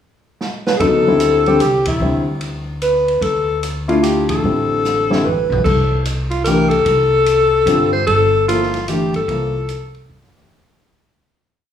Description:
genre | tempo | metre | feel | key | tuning
modal jazz | 148 BPM | 3/4 | swing 64% on 8ths | D minor | A4 = 440 Hz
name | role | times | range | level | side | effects
open jazz drum kit | drums | 0.4-10.5 s | crash cymbal, hi-hat, kick drum, ride cymbal, snare drum, toms | -27 LUFS | right 1 dB | none
breathy alto saxophone | melody | 0.7-10.1 s | E4 to C5 | -16 LUFS | left 2 dB | none
warm grand piano | accompaniment | 0.8-10.5 s | C#3 to A4 | -18 LUFS | left 2 dB | none
upright bass | bass | 0.8-10.5 s | G1 to G2 | -22 LUFS | equal | none
room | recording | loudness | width
moderate recital hall reverb, RT60 1.6 s | recorded in a church or concert hall, studio reverb | -13 LUFS | side -9 dB against mid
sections
0.0-0.8 pickup bar; 0.8-10.5 A section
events
drum fill 0.4-0.8, 4.8-5.6, 10.1-10.5; band accent 1.8, 4.2; fade-out 8.6-10.5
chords
0.0 N.C.; 0.8 D9sus4; 5.6 Csus4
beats
0.40 | 0.80 1.20 1.61 | 2.01 2.42 2.82 | 3.23 3.63 4.03 | 4.44 4.84 5.25 | 5.65 6.05 6.46 | 6.86 7.26 7.67 | 8.07 8.48 8.88 | 9.29 9.69 10.10

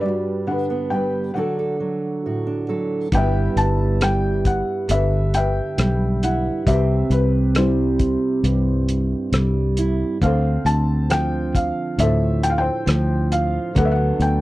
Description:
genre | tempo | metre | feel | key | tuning
acoustic folk-pop ballad | 68 BPM | 4/4 | straight | G major | A4 = 440 Hz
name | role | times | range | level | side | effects
felt-muted upright piano | melody | 0.0-14.4 s | E4 to A5 | -24 LUFS | left 2 dB | none
fingerpicked steel-string acoustic guitar | accompaniment | 0.0-14.4 s | G2 to B4 | -23 LUFS | right 3 dB | none
fingered electric bass | bass | 3.1-14.4 s | G1 to D2 | -20 LUFS | left 1 dB | none
cloth-damped thuddy drum kit | drums | 3.1-14.4 s | hi-hat, kick drum, rim click | -22 LUFS | equal | none
room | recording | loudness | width
little or no reverb | dry, close 1970s-style studio recording | -18 LUFS | side -17 dB against mid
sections
0.0-3.1 A section; 3.1-14.4 B section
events
none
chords
0.0 G; 1.4 D; 3.1 G6; 6.7 Cmaj7; 10.2 Dm7; 13.8 Bm7/D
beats
0.47 1.35 2.24 | 3.13 4.01 4.90 5.79 | 6.67 7.56 8.44 9.33 | 10.21 11.10 11.99 12.87 | 13.76

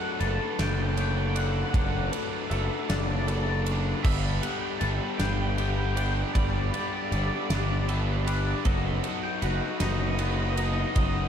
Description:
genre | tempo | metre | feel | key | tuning
post-rock | 52 BPM (dotted quarters) | 6/8 | straight | G major | A4 = 440 Hz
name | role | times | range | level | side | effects
twangy electric guitar | melody | 0.0-11.3 s | B4 to B5 | -34 LUFS | equal | lush chorus, diffuse ambient delay
dark chamber string section | sustained chords | 0.0-11.3 s | A4 to D#6 | -43 LUFS | right 3 dB | none
twangy electric guitar | arpeggios | 0.0-11.3 s | F#3 to A4 | -41 LUFS | left 3 dB | none
twelve-string electric guitar | arpeggios | 0.0-11.3 s | A4 to D#5 | -43 LUFS | right 4 dB | none
raw garage guitar | riff | 0.0-11.3 s | F#3 to A4 | -33 LUFS | left 10 dB | overdrive
tight distorted guitar | riff | 0.0-11.3 s | F#3 to A4 | -36 LUFS | right 10 dB | distortion
fuzz picked electric bass | bass | 0.2-11.3 s | F#1 to G1 | -28 LUFS | equal | overdrive
big rock drum kit | drums | 0.2-11.1 s | crash cymbal, kick drum, ride cymbal, snare drum | -32 LUFS | right 1 dB | none
room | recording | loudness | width
light reverb, small room ambience | none | -25 LUFS | side -8 dB against mid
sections
0.0-11.3 A section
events
none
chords
0.0 D6/F#; 4.0 Gadd9; 8.7 B/F#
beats
0.59 | 1.74 2.89 | 4.05 5.20 | 6.35 7.50 | 8.65 9.80 | 10.96

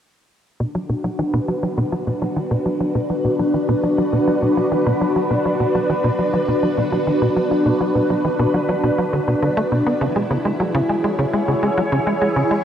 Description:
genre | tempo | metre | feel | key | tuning
ambient, sequencer-driven space music | 102 BPM | 4/4 | straight | B dorian | A4 = 444 Hz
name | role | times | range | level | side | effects
string machine, full ensemble | sustained chords | 0.6-12.6 s | D4 to C#5 | -19 LUFS | equal | phaser, ensemble chorus
tight sequencer bass | riff | 0.6-12.6 s | B2 to B3 | -21 LUFS | equal | analog chorus, tape echo
room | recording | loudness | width
wet huge ambient reverb, RT60 7.7 s | dreamy mix soaked in reverb, cassette tape | -17 LUFS | side -9 dB against mid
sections
0.6-12.6 A section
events
filter sweep on analog synth bass 0.6-12.6; filter sweep on string machine 0.6-12.6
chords
0.6 Bm; 10.0 C#m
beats
| 0.60 1.19 1.78 2.37 | 2.95 3.54 4.13 4.72 | 5.31 5.89 6.48 7.07 | 7.66 8.25 8.84 9.42 | 10.01 10.60 11.19 11.78 | 12.37

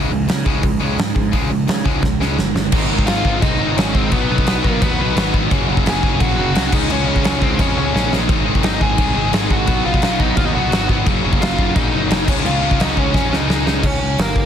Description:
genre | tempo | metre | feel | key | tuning
punk rock | 173 BPM | 4/4 | straight | unclear | A4 = 440 Hz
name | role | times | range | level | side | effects
distorted electric guitar | riff | 0.0-13.8 s | Gb2 to Db4 | -24 LUFS | right 14 dB | distortion
overdriven semi-hollow guitar | riff | 0.0-13.8 s | Gb2 to Eb4 | -23 LUFS | left 16 dB | none
fuzz picked electric bass | bass | 0.0-14.5 s | Gb1 to Db3 | -22 LUFS | equal | overdrive
big rock drum kit | drums | 0.3-14.4 s | crash cymbal, hi-hat, kick drum, snare drum | -18 LUFS | equal | none
scooped high-gain guitar | riff | 2.7-13.8 s | Gb2 to Db4 | -26 LUFS | equal | distortion
bluesy overdriven lead guitar | melody | 3.1-14.5 s | Bb3 to Ab5 | -22 LUFS | left 1 dB | distortion, tape echo
room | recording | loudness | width
little or no reverb | dense, heavily limited modern master | -14 LUFS | side -9 dB against mid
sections
0.0-2.7 A section; 2.7-13.8 B section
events
drum fill 2.0-2.7, 7.9-8.3, 13.1-13.8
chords
0.0 Db; 2.7 Ab; 4.1 B; 5.5 Gb; 6.7 Db; 8.3 Ab; 9.7 B; 11.1 Gb; 12.3 Db; 13.8 Gdim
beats
0.28 0.63 0.98 | 1.33 1.68 2.03 2.38 | 2.73 3.08 3.43 3.77 | 4.12 4.47 4.82 5.17 | 5.51 5.86 6.21 6.55 | 6.90 7.25 7.59 7.94 | 8.29 8.63 8.98 9.33 | 9.67 10.02 10.37 10.71 | 11.06 11.41 11.76 12.10 | 12.45 12.80 13.14 13.49 | 13.84 14.19

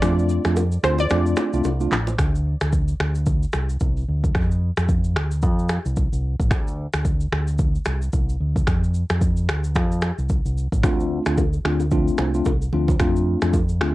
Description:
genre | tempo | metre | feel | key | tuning
afrobeats | 111 BPM | 4/4 | swing 58% on 16ths | unclear | A4 = 440 Hz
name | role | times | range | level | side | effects
analog pluck | melody | 0.0-1.9 s | C5 to D5 | -27 LUFS | equal | chorus, tape echo
tine electric piano | accompaniment | 0.0-2.0, 10.8-13.9 s | A3 to F4 | -23 LUFS | left 1 dB | medium stereo tremolo
fingered electric bass | bass | 0.0-13.9 s | A1 to F2 | -22 LUFS | equal | none
afro-pop drum kit | drums | 0.0-13.9 s | finger snaps, handclaps, kick drum, rim click, shaker | -22 LUFS | equal | vintage 12-bit sampler grit
congas and bongos | percussion | 0.0-2.2, 10.8-13.7 s | none | -30 LUFS | right 4 dB | none
room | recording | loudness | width
little or no reverb | worn, warbling old tape, cassette tape, warbly pitch drift | -19 LUFS | side -17 dB against mid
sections
0.0-2.2 A section; 2.2-13.9 B section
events
break 0.0-2.2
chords
0.0 F6; 2.2 Csus2; 4.3 F5; 6.5 Csus2; 8.7 F5; 10.8 Dm7; 13.0 F6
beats
| 0.03 0.57 1.11 1.65 | 2.19 2.73 3.27 3.81 | 4.35 4.89 5.43 5.97 | 6.51 7.05 7.59 8.13 | 8.67 9.21 9.76 10.29 | 10.84 11.38 11.92 12.46 | 13.00 13.54

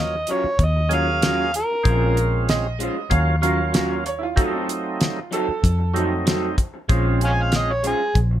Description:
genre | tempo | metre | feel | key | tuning
straight-eighth soul blues | 95 BPM | 4/4 | straight | Bb minor | A4 = 441 Hz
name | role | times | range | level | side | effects
overdriven harmonica | melody | 0.0-2.5, 7.2-8.2 s | Ab4 to Ab5 | -22 LUFS | equal | none
percussive tonewheel organ | accompaniment | 0.0-7.7 s | F3 to Ab4 | -25 LUFS | right 2 dB | slow rotary speaker, overdrive
vintage muted fingered electric bass | bass | 0.0-8.4 s | Bb1 to F2 | -22 LUFS | equal | none
electric guitar through a small old amp | stabs | 0.1-8.4 s | Gb3 to C5 | -27 LUFS | equal | spring reverb
damped 70s drum kit | drums | 0.3-8.3 s | hi-hat, kick drum, snare drum | -21 LUFS | equal | none
bright upright piano | second line | 2.5-5.9 s | E4 to F5 | -28 LUFS | right 5 dB | none
room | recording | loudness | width
light reverb | none | -18 LUFS | side -12 dB against mid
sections
0.0-6.9 A section; 6.9-8.4 B section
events
harmonica solo 6.9-8.4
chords
0.0 Ebm9; 1.8 Bbm9; 3.1 Ebm9; 4.4 F7b9; 6.9 Bbm9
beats
0.59 1.22 | 1.85 2.48 3.11 3.74 | 4.37 5.00 5.63 6.26 | 6.89 7.52 8.15

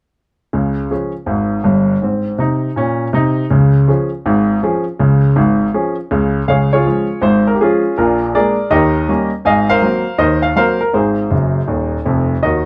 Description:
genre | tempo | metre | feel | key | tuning
jazz, stride piano | 161 BPM | 4/4 | swing 64% on 8ths | Db major | A4 = 440 Hz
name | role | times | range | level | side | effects
clear baby grand piano | solo | 0.5-12.7 s | Eb1 to Ab5 | -15 LUFS | equal | none
room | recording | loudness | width
moderate club reverb, RT60 0.8 s | close, detailed microphones | -15 LUFS | mono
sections
0.5-6.5 A section; 6.5-12.7 B section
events
grand piano fill 11.3-12.4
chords
0.5 Db; 2.0 Ab; 3.5 Db; 8.0 Bb7; 8.7 Eb7; 9.5 Ab13; 10.9 Ab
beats
| 0.53 0.90 1.27 1.65 | 2.02 2.39 2.76 3.14 | 3.51 3.88 4.25 4.62 | 5.00 5.37 5.74 6.11 | 6.48 6.86 7.23 7.60 | 7.97 8.34 8.71 9.09 | 9.46 9.83 10.20 10.57 | 10.95 11.32 11.69 12.06 | 12.43

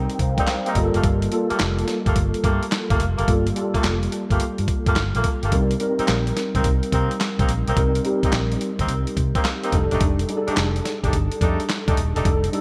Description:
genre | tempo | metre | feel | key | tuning
R&B, new jack swing | 107 BPM | 4/4 | swing 66% on 16ths | G minor | A4 = 440 Hz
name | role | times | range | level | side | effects
mellow tine electric piano | accompaniment | 0.0-12.6 s | G3 to Bb5 | -27 LUFS | equal | ensemble chorus
vintage muted fingered electric bass | bass | 0.0-12.5 s | Eb1 to C3 | -26 LUFS | equal | tube saturation
dusty soul sampler-style drum kit | drums | 0.1-12.6 s | handclaps, hi-hat, kick drum, snare drum | -26 LUFS | equal | none
mellow horn section | stabs | 0.4-12.3 s | A3 to Bb4 | -30 LUFS | equal | delay
room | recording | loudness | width
moderate lush hall reverb, RT60 1.9 s | bright 1980s-style digital production | -21 LUFS | mono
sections
0.0-12.6 A section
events
tine electric piano fill 0.0-1.0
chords
0.0 Cm7; 0.8 Gm9; 5.5 Cm7; 9.7 F13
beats
0.48 | 1.04 1.60 2.16 2.72 | 3.28 3.84 4.40 4.96 | 5.52 6.08 6.64 7.21 | 7.77 8.33 8.89 9.45 | 10.01 10.57 11.13 11.69 | 12.25

